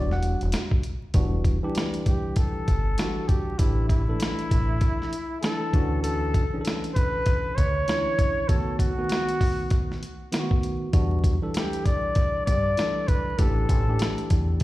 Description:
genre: hip hop, jazz-hop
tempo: 98 BPM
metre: 4/4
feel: swing 60% on 16ths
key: E dorian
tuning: A4 = 439 Hz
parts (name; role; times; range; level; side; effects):
- bright tine electric piano; accompaniment; 0.0-14.6 s; D#3 to F#5; -30 LUFS; right 1 dB; none
- deep dub fingered electric bass; bass; 0.0-14.6 s; E1 to G2; -25 LUFS; equal; none
- dusty soul sampler-style drum kit; drums; 0.1-14.6 s; hi-hat, kick drum, snare drum; -24 LUFS; equal; none
- breathy flugelhorn; melody; 2.1-14.6 s; E4 to D5; -28 LUFS; left 1 dB; analog delay
room: digital ambience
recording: played on a big sound system in a bare room, large studio reverb, vinyl crackle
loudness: -22 LUFS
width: side -17 dB against mid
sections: 0.0-1.1 A section; 1.1-14.6 B section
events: tine electric piano solo 0.0-1.1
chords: 0.0 Em9; 3.6 A7sus4; 5.7 Dmaj9; 8.5 B7; 10.9 Em9; 13.4 A7sus4

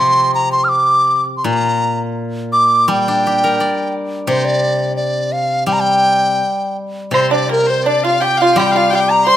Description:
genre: chinese traditional, Chinese chamber ensemble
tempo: 84 BPM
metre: 2/4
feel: rubato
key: G yu mode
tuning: A4 = 440 Hz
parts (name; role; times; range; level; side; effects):
- mellow hollow dizi; melody; 0.0-9.4 s; Bb4 to F6; -14 LUFS; equal; none
- steel-string zither; accompaniment; 0.0-9.4 s; Bb2 to D5; -19 LUFS; left 1 dB; none
- clear erhu; second line; 7.1-9.4 s; Bb4 to C6; -18 LUFS; left 6 dB; none
- pipa; second line; 7.1-9.4 s; Bb3 to C5; -18 LUFS; right 4 dB; none
- woodblock; percussion; 7.1-8.7 s; none; -22 LUFS; left 2 dB; none
room: moderate recital hall reverb, RT60 1.2 s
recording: close, detailed microphones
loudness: -13 LUFS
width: side -12 dB against mid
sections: 0.0-7.1 A section; 7.1-9.4 B section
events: none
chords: none

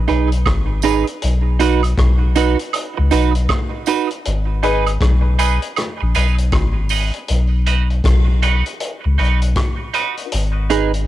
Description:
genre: dub reggae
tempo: 79 BPM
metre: 4/4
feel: swing 62% on 16ths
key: unclear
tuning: A4 = 438 Hz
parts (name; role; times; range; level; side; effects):
- soft dub sub bass; bass; 0.0-11.0 s; G#1 to C#2; -16 LUFS; left 1 dB; none
- clean electric guitar; accompaniment; 0.1-10.9 s; D#4 to B4; -20 LUFS; right 9 dB; analog chorus, high-pass filter, cassette tape, dub echo
- vintage drum kit; drums; 0.1-11.1 s; hi-hat, kick drum, rim click; -22 LUFS; left 1 dB; cassette tape
- tambourine and woodblock; percussion; 0.1-7.1 s; none; -26 LUFS; right 10 dB; high-pass filter on perc, dub echo
- clear grand piano; stabs; 4.6-10.2 s; D#4 to B4; -27 LUFS; left 9 dB; high-pass filter, cassette tape, dub echo
room: little or no reverb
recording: home recording on cassette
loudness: -15 LUFS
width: side -14 dB against mid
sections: 0.0-11.1 A section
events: break 0.0-4.2; filter sweep 1.2-10.3; part muted 7.3-11.1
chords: 0.0 G#m; 1.2 B; 4.2 G#m; 7.3 B; 10.3 G#m

